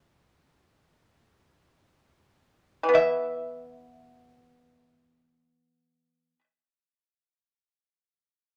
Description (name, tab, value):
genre	chinese traditional, Chinese solo plucked strings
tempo	free time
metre	none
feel	none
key	unclear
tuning	A4 = 440 Hz
part	pipa	solo	0.0-6.4 s	E3 to E5	-25 LUFS	equal	none
room	moderate studio reverb, RT60 0.9 s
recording	none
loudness	-26 LUFS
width	mono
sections	0.0-2.9 A section; 2.9-8.6 B section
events	slowing down 0.0-2.9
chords	none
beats	free time